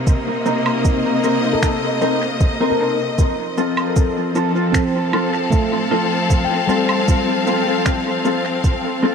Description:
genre	ambient dub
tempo	77 BPM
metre	4/4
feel	straight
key	unclear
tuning	A4 = 440 Hz
part	clear symphonic string section	sustained chords	0.0-9.1 s	C3 to F5	-20 LUFS	left 2 dB	none
part	handpan	arpeggios	0.0-9.1 s	G3 to G5	-24 LUFS	left 1 dB	dub echo
part	electronic cabasa, woodblock and finger snaps	drums	0.1-8.8 s	none	-28 LUFS	right 2 dB	dub echo
part	electronic kick drum	drums	0.1-8.8 s	none	-16 LUFS	equal	none
part	mellow electric guitar	stabs	0.5-9.1 s	C4 to Bb4	-20 LUFS	left 1 dB	analog chorus, dub echo
room	moderate lush hall reverb, RT60 3.2 s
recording	none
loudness	-16 LUFS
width	side -6 dB against mid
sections	0.0-9.1 A section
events	none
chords	0.0 Cm7; 3.2 F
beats	| 0.07 0.85 1.63 2.41 | 3.19 3.96 4.74 5.52 | 6.30 7.08 7.86 8.64

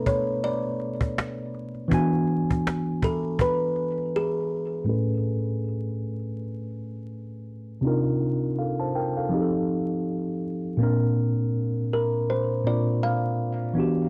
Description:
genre	lo-fi hip hop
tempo	81 BPM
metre	4/4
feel	swing 58% on 16ths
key	unclear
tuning	A4 = 440 Hz
part	kalimba	melody	0.0-7.4, 11.9-13.6 s	G#4 to F5	-30 LUFS	equal	low-pass filter, analog delay
part	mellow tine electric piano	accompaniment	0.0-14.1 s	A2 to A5	-28 LUFS	equal	cassette tape, low-pass filter
part	cajon	drums	0.1-4.1 s	none	-29 LUFS	equal	none
room	moderate studio reverb, RT60 0.6 s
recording	worn, warbling old tape, cassette tape, vinyl crackle, warbly pitch drift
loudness	-26 LUFS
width	mono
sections	0.0-4.9 A section; 4.9-14.1 B section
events	break 4.1-4.9; filter sweep 4.9-14.1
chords	0.0 Bm7; 1.9 E7; 4.9 Amaj9; 7.8 Cm11; 9.3 F9; 10.8 Bbadd9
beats	0.43 1.17 | 1.91 2.65 3.39 4.13 | 4.87 5.61 6.35 7.09 | 7.84 8.58 9.32 10.06 | 10.80 11.54 12.28 13.02 | 13.76

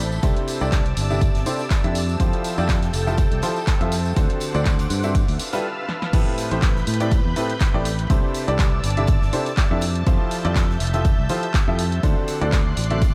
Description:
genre	piano house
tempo	122 BPM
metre	4/4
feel	swing 55% on 16ths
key	A minor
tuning	A4 = 440 Hz
part	analog string pad	sustained chords	0.0-13.1 s	A4 to G6	-33 LUFS	equal	ensemble chorus, sidechain pumping
part	fingered electric bass	bass	0.0-13.1 s	F1 to A2	-26 LUFS	equal	tube saturation, sidechain pumping
part	warbly tape-like pad	texture	0.0-5.6 s	C4 to E6	-38 LUFS	equal	none
part	tambourine	percussion	0.1-5.6 s	none	-40 LUFS	equal	none
part	clear grand piano	riff	0.2-13.0 s	A2 to E5	-28 LUFS	equal	sidechain pumping, low-pass filter, diffuse ambient delay
part	electronic kick drum	drums	0.2-13.1 s	none	-22 LUFS	equal	none
part	oversized low-tuned drum kit	drums	0.2-13.1 s	hi-hat, snare drum	-44 LUFS	equal	none
part	punchy analog drum machine	drums	0.2-13.1 s	crash cymbal, handclaps, hi-hat, snare drum	-34 LUFS	equal	none
room	light reverb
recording	none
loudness	-21 LUFS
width	mono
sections	0.0-6.1 A section; 6.1-13.1 B section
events	break 5.6-6.1; drum fill 5.9; drop 6.1-13.1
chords	0.2 C69; 2.0 Fmaj9; 4.2 D7; 5.1 G13; 6.1 Am9; 8.1 C69; 9.8 Fmaj9; 12.0 D7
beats	| 0.23 0.72 1.21 1.71 | 2.20 2.69 3.18 3.67 | 4.17 4.66 5.15 5.64 | 6.13 6.62 7.12 7.61 | 8.10 8.59 9.08 9.57 | 10.07 10.56 11.05 11.54 | 12.03 12.53 13.02

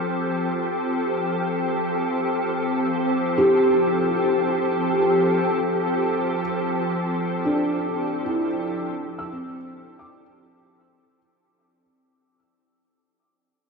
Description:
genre	ambient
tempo	free time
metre	none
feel	none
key	F major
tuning	A4 = 440 Hz
part	soft additive organ-like pad	sustained chords	0.0-11.2 s	F3 to A4	-22 LUFS	equal	ensemble chorus, built-in reverb
part	felt-muted upright piano	arpeggios	3.4-12.3 s	C4 to E6	-23 LUFS	equal	diffuse ambient delay
room	wet huge ambient reverb, RT60 7.7 s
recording	worn, warbling old tape, cassette tape, warbly pitch drift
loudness	-20 LUFS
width	side -4 dB against mid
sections	0.0-11.2 A section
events	fade-in on ambient pad 0.0-11.2; fade-out 5.5-11.2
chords	0.0 Fmaj9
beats	free time

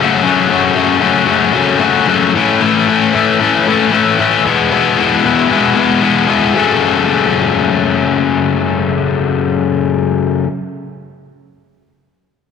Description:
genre	rock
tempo	114 BPM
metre	4/4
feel	straight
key	F# minor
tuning	A4 = 440 Hz
part	distorted electric guitar	solo	0.0-10.5 s	E2 to A4	-11 LUFS	left 6 dB	distortion
room	wet echo chamber reverb, RT60 2.2 s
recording	none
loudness	-10 LUFS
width	side -6 dB against mid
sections	0.0-6.5 A section; 6.5-10.8 B section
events	none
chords	0.0 F#m; 2.3 A; 4.4 E; 6.5 F#m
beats	| 0.24 0.76 1.28 1.81 | 2.33 2.86 3.39 3.91 | 4.44 4.97 5.49 6.02 | 6.55 7.08 7.60 8.13 | 8.66 9.19 9.71 10.24

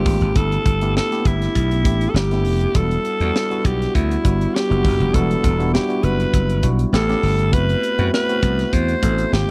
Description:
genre	polished 1980s jazz-funk pop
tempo	100 BPM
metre	4/4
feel	swing 54% on 16ths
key	E minor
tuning	A4 = 440 Hz
part	breathy alto saxophone	melody	0.0-9.5 s	E4 to C5	-25 LUFS	equal	slapback echo
part	tine electric piano	accompaniment	0.0-9.5 s	G3 to A4	-26 LUFS	equal	overdrive, lush chorus
part	slap bass	bass	0.0-9.5 s	E1 to F#2	-22 LUFS	equal	none
part	tight funk drum kit	drums	0.1-9.5 s	hi-hat, kick drum, snare drum	-24 LUFS	equal	none
room	little or no reverb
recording	dry, close 1970s-style studio recording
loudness	-18 LUFS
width	mono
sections	0.0-9.5 A section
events	none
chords	0.4 G69; 2.8 Em9; 6.9 A9; 7.5 Am69/F#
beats	| 0.36 0.96 1.55 2.15 | 2.75 3.35 3.94 4.54 | 5.14 5.74 6.34 6.93 | 7.53 8.13 8.73 9.33

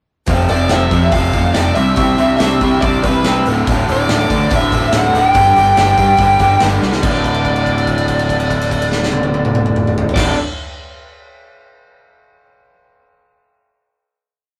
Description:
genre	classic rock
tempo	142 BPM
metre	4/4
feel	straight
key	unclear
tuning	A4 = 440 Hz
part	picked swing-style acoustic guitar	accompaniment	0.3-10.4 s	G2 to A4	-27 LUFS	equal	none
part	crunchy overdriven guitar	riff	0.3-10.4 s	D2 to F#4	-25 LUFS	equal	spring reverb
part	overdriven electric guitar	riff	0.3-10.4 s	D2 to C4	-21 LUFS	equal	none
part	growling picked electric bass	bass	0.3-10.3 s	D1 to G2	-20 LUFS	equal	overdrive
part	big rock drum kit	drums	0.3-10.3 s	crash cymbal, hi-hat, kick drum, snare drum, toms	-22 LUFS	equal	none
part	bluesy overdriven lead guitar	melody	0.5-10.3 s	B4 to G5	-18 LUFS	equal	distortion
room	wet studio ambience, RT60 0.5 s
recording	rough rehearsal-room recording, warm saturation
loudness	-14 LUFS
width	mono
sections	0.3-7.0 pre-chorus; 7.0-10.4 final chord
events	drum fill 6.8; held note 7.0-10.2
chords	0.3 F; 1.8 Cadd9; 3.5 D6; 5.4 G; 7.0 D6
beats	| 0.29 0.72 1.14 1.57 | 1.99 2.41 2.83 3.25 | 3.68 4.10 4.52 4.94 | 5.36 5.78 6.20 6.62 | 7.04 7.46 7.88 8.30 | 8.72 9.14 9.56 9.99

